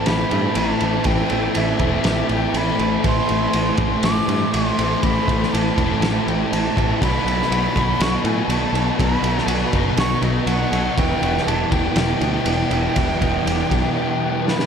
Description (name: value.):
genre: rock, shoegaze and dream pop.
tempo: 121 BPM.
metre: 4/4.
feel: straight.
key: A minor.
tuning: A4 = 441 Hz.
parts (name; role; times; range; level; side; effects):
silver concert flute; melody; 0.0-14.7 s; D#5 to D6; -25 LUFS; right 1 dB; tape echo.
direct-recorded clean electric guitar; arpeggios; 0.0-14.7 s; E3 to G4; -31 LUFS; left 7 dB; ensemble chorus, tape echo.
overdriven electric guitar; riff; 0.0-14.7 s; A2 to A4; -24 LUFS; right 9 dB; reverse reverb.
thick fuzz guitar; riff; 0.0-14.7 s; E2 to B3; -23 LUFS; left 7 dB; distortion, ensemble chorus.
picked electric bass; bass; 0.1-13.9 s; E1 to A2; -24 LUFS; equal; none.
loose indie drum kit; drums; 0.1-14.7 s; kick drum, ride cymbal, snare drum; -24 LUFS; right 1 dB; none.
room: wet huge ambient reverb, RT60 8.0 s.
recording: dreamy mix soaked in reverb.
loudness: -17 LUFS.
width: side -7 dB against mid.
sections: 0.0-14.7 A section.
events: drum fill 14.5.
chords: 0.0 Am7; 7.0 B7; 11.0 Em7.